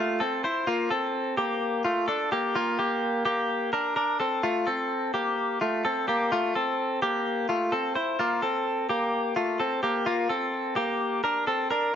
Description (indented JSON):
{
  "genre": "indie pop",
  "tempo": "128 BPM",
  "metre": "4/4",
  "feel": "straight",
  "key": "unclear",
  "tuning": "A4 = 442 Hz",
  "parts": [
    { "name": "direct-recorded clean electric guitar", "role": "solo", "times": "0.0-11.9 s", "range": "A3 to C5", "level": "-24 LUFS", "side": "equal", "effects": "wide subtle chorus, analog delay" }
  ],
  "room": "wet spring reverb, RT60 1.2 s, digital ambience",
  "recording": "echo-heavy mix, vinyl crackle, nothing above 7.6 kHz",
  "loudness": "-24 LUFS",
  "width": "side -9 dB against mid",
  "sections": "0.0-12.0 A section",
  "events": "none",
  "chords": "0.0 F; 0.7 Gm7; 4.2 Am7; 8.2 C7sus4",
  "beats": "0.20 | 0.67 1.14 1.61 2.08 | 2.55 3.02 3.49 3.96 | 4.43 4.90 5.37 5.84 | 6.31 6.78 7.25 7.72 | 8.19 8.66 9.13 9.60 | 10.06 10.53 11.00 11.47 | 11.94"
}